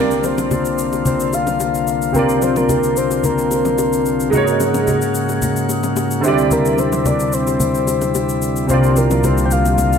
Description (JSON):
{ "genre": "amapiano", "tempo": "110 BPM", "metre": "4/4", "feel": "straight", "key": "unclear", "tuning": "A4 = 442 Hz", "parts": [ { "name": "soft octave-layered synth lead", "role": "melody", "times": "0.0-10.0 s", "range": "Bb4 to G5", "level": "-20 LUFS", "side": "left 2 dB", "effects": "chorus, diffuse ambient delay" }, { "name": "warm grand piano", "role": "accompaniment", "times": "0.0-10.0 s", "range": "C3 to D5", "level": "-21 LUFS", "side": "right 3 dB", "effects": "ensemble chorus" }, { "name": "pipe organ, sparkling flutes", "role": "sustained chords", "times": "0.0-10.0 s", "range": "C2 to Gb4", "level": "-20 LUFS", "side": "left 3 dB", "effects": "none" }, { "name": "shaker", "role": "drums", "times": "0.1-10.0 s", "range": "none", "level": "-28 LUFS", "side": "left 4 dB", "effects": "overdrive" }, { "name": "bongos and congas", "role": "percussion", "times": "0.2-9.9 s", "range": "none", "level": "-24 LUFS", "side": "left 1 dB", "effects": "none" }, { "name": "fat analog bass", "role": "bass", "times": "8.7-10.0 s", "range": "C2", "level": "-15 LUFS", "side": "right 1 dB", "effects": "none" } ], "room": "moderate plate reverb, RT60 2.1 s", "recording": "dreamy mix soaked in reverb", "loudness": "-14 LUFS", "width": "side -7 dB against mid", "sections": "0.0-10.0 A section", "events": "none", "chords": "0.0 C9sus4; 4.3 Ab9sus4; 6.2 D9sus4; 8.7 C9sus4" }